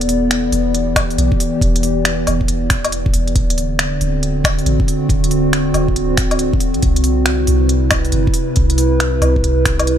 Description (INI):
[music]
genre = future garage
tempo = 138 BPM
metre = 4/4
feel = swing 64% on 16ths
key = E minor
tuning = A4 = 436 Hz
[part]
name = warbly tape-like pad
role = sustained chords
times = 0.0-10.0 s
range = C3 to D5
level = -18 LUFS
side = equal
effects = chorus, built-in reverb, sidechain pumping
[part]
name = soft 808-style bass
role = bass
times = 0.0-10.0 s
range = D1 to C2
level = -19 LUFS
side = equal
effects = sidechain pumping
[part]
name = organic electronic drum kit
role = drums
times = 0.0-10.0 s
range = finger snaps, hi-hat, woodblock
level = -19 LUFS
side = left 1 dB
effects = small room reverb
[part]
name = electronic kick drum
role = drums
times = 1.0-9.8 s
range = none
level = -18 LUFS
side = equal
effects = small room reverb
[sound]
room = light reverb, digital ambience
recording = none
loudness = -13 LUFS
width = side -10 dB against mid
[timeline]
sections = 0.0-10.0 A section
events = none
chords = 0.0 Em7; 3.4 D7; 6.8 Cmaj7